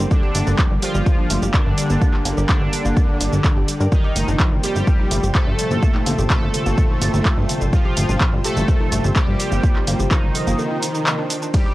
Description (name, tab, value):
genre	melodic techno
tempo	126 BPM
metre	4/4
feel	straight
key	unclear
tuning	A4 = 440 Hz
part	evolving wavetable pad	sustained chords	0.0-11.7 s	F4 to D6	-31 LUFS	equal	chorus, built-in reverb, sidechain pumping
part	woody wave-folded pluck	arpeggios	0.0-11.7 s	D3 to Bb4	-28 LUFS	equal	chorus, sidechain pumping, tape echo
part	brassy analog pad	stabs	0.0-11.1 s	Bb2 to Bb3	-28 LUFS	right 2 dB	chorus, sidechain pumping, tape echo
part	plucky analog bass	bass	0.0-10.5 s	G1 to G2	-20 LUFS	equal	sidechain pumping
part	resonant sweep polysynth	melody	0.1-11.7 s	D3 to A4	-26 LUFS	equal	chorus, sidechain pumping, analog delay
part	soft supersaw	second line	0.1-11.7 s	D3 to A3	-29 LUFS	equal	sidechain pumping, tape echo
part	electronic kick drum	drums	0.1-11.6 s	none	-17 LUFS	equal	none
part	punchy analog drum machine	drums	0.1-11.6 s	handclaps, hi-hat, ride cymbal, shaker	-24 LUFS	right 1 dB	none
room	digital ambience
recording	dry, gritty hardware recording, cassette tape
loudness	-16 LUFS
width	side -17 dB against mid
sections	0.0-11.7 A section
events	break 10.6-11.5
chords	0.0 Gm; 3.9 Fsus4/G